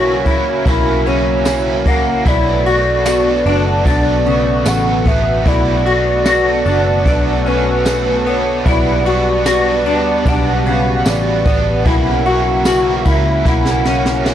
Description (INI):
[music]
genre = dream pop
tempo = 75 BPM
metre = 4/4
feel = straight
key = B minor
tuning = A4 = 440 Hz
[part]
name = warbly nostalgic lead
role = melody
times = 0.0-14.3 s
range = A#4 to F#5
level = -19 LUFS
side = right 1 dB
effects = chorus, analog delay
[part]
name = crunchy overdriven guitar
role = accompaniment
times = 0.0-14.3 s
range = B2 to F#4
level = -23 LUFS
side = right 5 dB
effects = tremolo, lush chorus
[part]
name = lush unison pad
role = sustained chords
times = 0.0-14.3 s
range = B2 to F#4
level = -20 LUFS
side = right 1 dB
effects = chorus
[part]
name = semi-hollow electric guitar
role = arpeggios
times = 0.0-14.3 s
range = C#3 to F#4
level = -18 LUFS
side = left 4 dB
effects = ensemble chorus, analog delay
[part]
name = picked electric bass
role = bass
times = 0.0-14.3 s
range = F#1 to D2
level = -19 LUFS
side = equal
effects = none
[part]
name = jazz brush drum kit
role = drums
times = 0.3-14.3 s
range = kick drum, ride cymbal, snare drum, tambourine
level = -19 LUFS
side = equal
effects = none
[sound]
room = light reverb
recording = dry, gritty hardware recording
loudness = -12 LUFS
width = side -10 dB against mid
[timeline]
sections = 0.0-14.3 A section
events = drum fill 13.5-14.3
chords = 0.0 F#7/B; 2.3 Bm7; 8.7 Gmaj7/B; 11.9 F#7/B